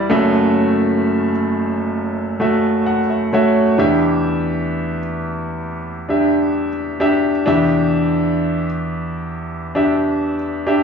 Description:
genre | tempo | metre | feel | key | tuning
folk | 65 BPM | 4/4 | straight | E minor | A4 = 440 Hz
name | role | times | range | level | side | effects
warm concert grand piano | solo | 0.0-10.8 s | F#1 to F#5 | -15 LUFS | equal | none
room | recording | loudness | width
light reverb | worn, warbling old tape, cassette tape, warbly pitch drift, studio ambience | -15 LUFS | side -6 dB against mid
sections
0.0-10.8 A section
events
none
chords
0.1 F#m7; 3.8 Em7

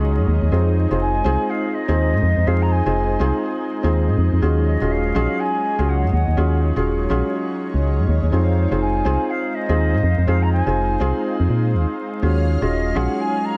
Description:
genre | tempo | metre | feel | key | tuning
deep house | 123 BPM | 4/4 | swing 61% on 16ths | unclear | A4 = 443 Hz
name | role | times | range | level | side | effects
hollow soft pad | sustained chords | 0.0-13.6 s | Gb3 to F5 | -32 LUFS | equal | chorus, vintage 12-bit sampler grit
felt-muted upright piano | stabs | 0.0-13.6 s | C4 to Ab4 | -26 LUFS | equal | delay
organ-like FM bass | bass | 0.0-13.1 s | Eb1 to Bb2 | -21 LUFS | equal | none
ethereal airy pad | texture | 0.0-13.6 s | Eb4 to Db5 | -35 LUFS | equal | ensemble chorus, built-in reverb, phaser
mellow hollow silver concert flute | melody | 1.0-13.6 s | Db5 to Bb5 | -28 LUFS | equal | vintage 12-bit sampler grit, digital delay
string machine, violins | texture | 12.2-13.6 s | Ab4 to F6 | -40 LUFS | equal | ensemble chorus
room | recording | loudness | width
light reverb, small room ambience | vinyl crackle | -19 LUFS | mono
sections
0.0-13.6 A section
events
none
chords
0.0 Ebm11; 0.5 Fm7; 4.4 Ebm11; 8.3 Fm7; 12.2 Ebm11

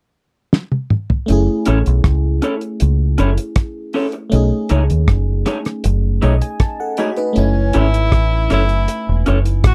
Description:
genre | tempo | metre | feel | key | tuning
lovers rock reggae | 79 BPM | 4/4 | straight | F# dorian | A4 = 440 Hz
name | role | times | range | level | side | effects
cloth-damped thuddy drum kit | drums | 0.5-9.7 s | hi-hat, kick drum, rim click, snare drum, toms | -19 LUFS | equal | none
FM electric piano | accompaniment | 1.3-9.7 s | A3 to B5 | -24 LUFS | equal | chorus, phaser, slapback echo
deep dub fingered electric bass | bass | 1.3-9.7 s | E1 to D#2 | -17 LUFS | equal | none
electric guitar through a small old amp | stabs | 1.7-9.4 s | A3 to C#5 | -21 LUFS | equal | subtle chorus
warm tenor saxophone | melody | 7.4-9.7 s | C#4 to F#4 | -24 LUFS | equal | tape echo
room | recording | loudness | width
little or no reverb | dry, close 1970s-style studio recording | -17 LUFS | mono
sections
0.0-1.3 A section; 1.3-7.4 B section; 7.4-9.7 C section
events
drum fill 0.5-1.3; FM electric piano fill 5.8-7.4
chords
0.0 N.C.; 1.3 F#m7 (rootless); 4.3 B13; 7.4 F#m7

